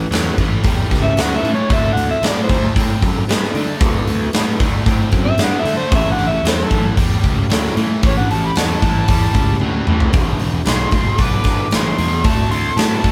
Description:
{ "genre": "blues rock power trio and southern rock", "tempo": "114 BPM", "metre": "4/4", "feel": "straight", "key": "unclear", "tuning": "A4 = 439 Hz", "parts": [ { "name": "mellow tonewheel organ", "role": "sustained chords", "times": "0.0-13.1 s", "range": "B3 to B4", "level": "-32 LUFS", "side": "equal", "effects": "none" }, { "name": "overdriven electric guitar", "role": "riff", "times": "0.0-13.1 s", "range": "E2 to C4", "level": "-26 LUFS", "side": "equal", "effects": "none" }, { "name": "fuzz picked electric bass", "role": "bass", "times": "0.0-13.1 s", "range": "E1 to D3", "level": "-23 LUFS", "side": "equal", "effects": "overdrive" }, { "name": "huge arena drum kit", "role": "drums", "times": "0.1-13.1 s", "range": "hi-hat, kick drum, snare drum, toms", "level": "-19 LUFS", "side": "equal", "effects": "none" }, { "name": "overdriven harmonica", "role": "melody", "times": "1.0-13.1 s", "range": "A4 to D6", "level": "-23 LUFS", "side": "equal", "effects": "none" }, { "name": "dark smooth lead guitar", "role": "second line", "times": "1.0-13.1 s", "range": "F#3 to B4", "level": "-30 LUFS", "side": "equal", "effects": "none" } ], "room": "light reverb", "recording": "band playing live in one room", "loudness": "-16 LUFS", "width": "mono", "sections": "0.0-13.1 A section", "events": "drum fill 9.6-10.1", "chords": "0.0 A7; 1.7 D7; 5.9 A7; 10.1 E7; 12.2 D7" }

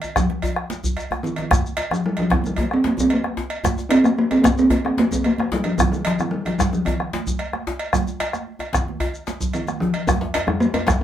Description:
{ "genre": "west african traditional, West African drum ensemble", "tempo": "112 BPM", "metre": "4/4", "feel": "straight", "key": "Eb major pentatonic", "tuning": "A4 = 440 Hz", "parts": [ { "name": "talking drum", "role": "melody", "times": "0.0-11.0 s", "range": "Eb3 to Eb4", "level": "-20 LUFS", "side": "equal", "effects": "none" }, { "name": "congas", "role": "percussion", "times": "0.0-11.0 s", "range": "none", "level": "-30 LUFS", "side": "right 7 dB", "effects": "none" }, { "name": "cowbell", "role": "percussion", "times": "0.0-10.9 s", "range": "none", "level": "-29 LUFS", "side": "right 1 dB", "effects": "none" }, { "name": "djembe", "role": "percussion", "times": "0.0-11.0 s", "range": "none", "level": "-29 LUFS", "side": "left 1 dB", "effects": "none" }, { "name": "shekere", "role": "percussion", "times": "0.0-11.0 s", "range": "none", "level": "-31 LUFS", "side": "left 1 dB", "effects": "none" }, { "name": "bombo", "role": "percussion", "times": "0.2-11.0 s", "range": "none", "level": "-22 LUFS", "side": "equal", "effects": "none" }, { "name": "djembe", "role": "percussion", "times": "10.1-11.0 s", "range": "none", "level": "-26 LUFS", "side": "left 2 dB", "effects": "none" } ], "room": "wet small room ambience, RT60 0.5 s", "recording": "band playing live in one room", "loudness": "-19 LUFS", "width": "side -10 dB against mid", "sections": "0.0-10.1 A section", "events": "drum fill 0.8-1.5", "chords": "none" }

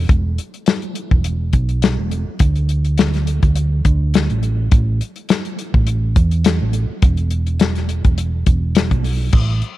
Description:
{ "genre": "straight-eighth soul blues", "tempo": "104 BPM", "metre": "4/4", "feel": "swing 54% on 16ths", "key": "unclear", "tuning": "A4 = 440 Hz", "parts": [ { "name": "hollow-body short-scale fingered electric bass", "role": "bass", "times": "0.0-9.6 s", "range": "E1 to E2", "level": "-17 LUFS", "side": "right 1 dB", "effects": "none" }, { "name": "warm soul drum kit", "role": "drums", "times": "0.1-9.8 s", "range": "crash cymbal, hi-hat, kick drum, snare drum", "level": "-16 LUFS", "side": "left 1 dB", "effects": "none" } ], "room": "light reverb", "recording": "1960s-style stereo", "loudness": "-15 LUFS", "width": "side -15 dB against mid", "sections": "0.0-9.3 A section", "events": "none", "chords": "none" }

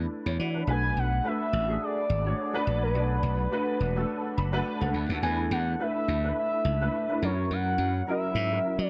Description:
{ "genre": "polished 1980s jazz-funk pop", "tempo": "106 BPM", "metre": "4/4", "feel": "swing 54% on 16ths", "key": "unclear", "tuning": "A4 = 440 Hz", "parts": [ { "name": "warm baby grand piano", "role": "accompaniment", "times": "0.0-8.9 s", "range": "F#3 to B5", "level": "-34 LUFS", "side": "equal", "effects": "ensemble chorus" }, { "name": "slap bass", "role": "bass", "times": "0.0-8.9 s", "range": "E1 to F#3", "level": "-30 LUFS", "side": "equal", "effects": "none" }, { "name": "expressive portamento lead", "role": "melody", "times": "0.7-8.9 s", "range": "B4 to G#5", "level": "-33 LUFS", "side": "equal", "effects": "chorus" } ], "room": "light reverb, studio ambience", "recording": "none", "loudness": "-28 LUFS", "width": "mono", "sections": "0.7-8.9 A section", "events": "grand piano fill 4.1-5.2", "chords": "0.0 E7sus4; 0.7 Bm7; 5.2 E7sus4; 7.2 F#7" }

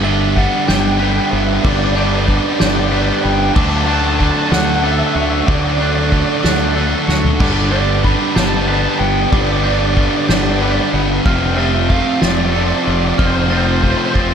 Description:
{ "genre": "post-rock", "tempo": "62 BPM (dotted quarters)", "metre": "6/8", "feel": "straight", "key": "G major", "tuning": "A4 = 440 Hz", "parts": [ { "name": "lead guitar through a small cranked amp", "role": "melody", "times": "0.0-14.3 s", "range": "C5 to B5", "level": "-21 LUFS", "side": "right 2 dB", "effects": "overdrive, tape echo" }, { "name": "glass harmonica", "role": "sustained chords", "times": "0.0-14.3 s", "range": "G3 to A5", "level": "-30 LUFS", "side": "equal", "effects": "none" }, { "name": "glockenspiel with soft plastic mallets", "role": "arpeggios", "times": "0.0-14.3 s", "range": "D6 to G7", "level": "-28 LUFS", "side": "right 3 dB", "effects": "tape echo" }, { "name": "twangy electric guitar", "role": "arpeggios", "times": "0.0-14.3 s", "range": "D3 to B4", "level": "-26 LUFS", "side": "left 2 dB", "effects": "tape echo" }, { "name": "cranked stack guitar", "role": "riff", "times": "0.0-14.3 s", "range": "F2 to D4", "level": "-20 LUFS", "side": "right 11 dB", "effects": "overdrive" }, { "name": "tight distorted guitar", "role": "riff", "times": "0.0-14.3 s", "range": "F2 to D4", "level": "-21 LUFS", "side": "left 10 dB", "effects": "distortion" }, { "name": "growling fingered electric bass", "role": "bass", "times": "0.0-14.3 s", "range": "F1 to D2", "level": "-19 LUFS", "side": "equal", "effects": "overdrive" }, { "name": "soft-mallet drum kit", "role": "drums", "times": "0.1-14.3 s", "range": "crash cymbal, kick drum, ride cymbal, snare drum, splash cymbal, toms", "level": "-19 LUFS", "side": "left 1 dB", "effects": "none" } ], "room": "light reverb, studio ambience", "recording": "none", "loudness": "-12 LUFS", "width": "side -7 dB against mid", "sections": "0.0-14.3 A section", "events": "drum fill 7.1-7.4, 14.1", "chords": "0.0 G; 3.6 D; 7.4 G; 11.2 F" }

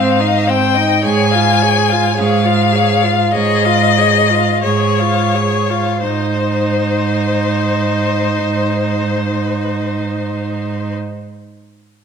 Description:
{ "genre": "classical, slow romantic movement for string quartet", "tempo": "41-56 BPM", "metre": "4/4", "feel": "rubato", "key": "Ab major", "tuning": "A4 = 440 Hz", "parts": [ { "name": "rich violin", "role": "melody", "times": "0.0-10.9 s", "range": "C5 to Ab5", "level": "-17 LUFS", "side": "left 8 dB", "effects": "none" }, { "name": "rich violin", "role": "second line", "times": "0.0-10.9 s", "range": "C5 to F5", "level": "-22 LUFS", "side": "left 4 dB", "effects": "none" }, { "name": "clear viola", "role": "accompaniment", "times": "0.0-10.9 s", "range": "C4 to Ab4", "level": "-20 LUFS", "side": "right 4 dB", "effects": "none" }, { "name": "rich cello", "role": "bass", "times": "0.0-10.9 s", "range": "Ab2", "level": "-17 LUFS", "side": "right 4 dB", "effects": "none" } ], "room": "wet recital hall reverb, RT60 1.4 s", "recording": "none", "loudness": "-12 LUFS", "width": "side -6 dB against mid", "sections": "0.0-6.0 A section; 6.0-11.2 B section", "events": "slowing down 0.0-6.0", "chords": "0.0 Ab; 1.1 Db/Ab; 6.0 Ab" }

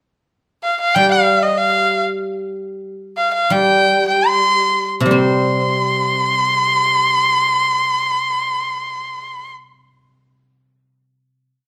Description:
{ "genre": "chinese traditional, Chinese chamber ensemble", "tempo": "65-98 BPM", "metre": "2/4", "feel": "rubato", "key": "unclear", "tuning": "A4 = 436 Hz", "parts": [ { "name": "rich erhu", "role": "melody", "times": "0.6-9.5 s", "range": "Eb5 to C6", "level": "-17 LUFS", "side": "equal", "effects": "none" }, { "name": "guzheng", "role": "accompaniment", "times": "1.0-11.6 s", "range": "C3 to C4", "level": "-21 LUFS", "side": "equal", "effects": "none" } ], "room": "moderate recital hall reverb, RT60 1.3 s", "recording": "none", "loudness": "-16 LUFS", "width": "mono", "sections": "0.0-5.1 A section; 5.1-8.7 final chord", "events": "slowing down 2.2-5.1", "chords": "none" }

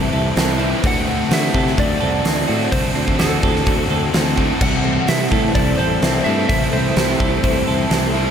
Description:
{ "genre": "rock, shoegaze and dream pop", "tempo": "127 BPM", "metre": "4/4", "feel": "straight", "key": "C lydian", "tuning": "A4 = 439 Hz", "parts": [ { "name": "lightly driven lead guitar", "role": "melody", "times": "0.0-7.6 s", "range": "A4 to F#5", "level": "-24 LUFS", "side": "equal", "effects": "lush chorus, ping-pong delay" }, { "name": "picked twelve-string acoustic guitar", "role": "arpeggios", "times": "0.0-8.3 s", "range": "E3 to G4", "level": "-29 LUFS", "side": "left 8 dB", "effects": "none" }, { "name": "biting overdriven guitar", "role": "riff", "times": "0.0-8.3 s", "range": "C3 to F#4", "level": "-25 LUFS", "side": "right 1 dB", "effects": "none" }, { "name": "clean electric guitar", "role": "riff", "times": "0.0-8.3 s", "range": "C3 to A4", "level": "-23 LUFS", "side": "right 7 dB", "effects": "reverse reverb" }, { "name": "thick fuzz guitar", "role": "riff", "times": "0.0-8.3 s", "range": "C3 to A4", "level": "-25 LUFS", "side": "left 7 dB", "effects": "distortion, ensemble chorus" }, { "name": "growling fingered electric bass", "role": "bass", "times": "0.0-8.3 s", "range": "A1 to D3", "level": "-22 LUFS", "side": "equal", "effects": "overdrive" }, { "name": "huge arena drum kit", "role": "drums", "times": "0.4-8.0 s", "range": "crash cymbal, hi-hat, kick drum, snare drum", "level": "-20 LUFS", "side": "equal", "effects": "none" }, { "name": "string machine, cellos", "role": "sustained chords", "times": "4.6-8.3 s", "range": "A4 to C6", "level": "-26 LUFS", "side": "equal", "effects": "ensemble chorus" } ], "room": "moderate huge ambient reverb, RT60 8.4 s", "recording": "dreamy mix soaked in reverb", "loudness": "-15 LUFS", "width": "side -8 dB against mid", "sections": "0.0-8.3 A section", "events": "none", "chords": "0.0 C6; 0.8 D7; 4.6 C6" }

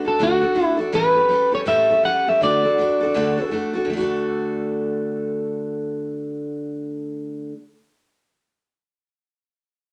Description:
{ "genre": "rock", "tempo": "162 BPM", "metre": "4/4", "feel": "swing 62% on 8ths", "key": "D major", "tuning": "A4 = 440 Hz", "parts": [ { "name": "picked steel-string acoustic guitar", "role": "accompaniment", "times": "0.0-7.7 s", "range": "A2 to A4", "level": "-26 LUFS", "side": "equal", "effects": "none" }, { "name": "electric guitar at the edge of break-up", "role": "melody", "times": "0.1-3.5 s", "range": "F#4 to F#5", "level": "-20 LUFS", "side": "equal", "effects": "none" } ], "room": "moderate studio reverb, RT60 0.8 s", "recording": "none", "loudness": "-21 LUFS", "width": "mono", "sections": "0.0-3.9 A section; 3.9-6.9 B section", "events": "none", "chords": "0.0 D; 0.9 A7; 2.4 D" }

